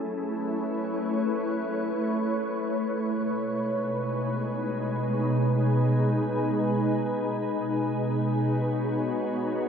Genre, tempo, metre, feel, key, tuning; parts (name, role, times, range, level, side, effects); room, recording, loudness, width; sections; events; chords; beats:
ambient; free time; A4 = 440 Hz
glassy FM pad; solo; 0.0-9.7 s; B2 to D#5; -25 LUFS; equal; ensemble chorus, built-in reverb, ping-pong delay
wet huge ambient reverb, RT60 7.0 s; dark, warm production; -25 LUFS; side -7 dB against mid
0.0-9.7 A section
0.0 A; 3.1 G#m/B; 7.7 B
free time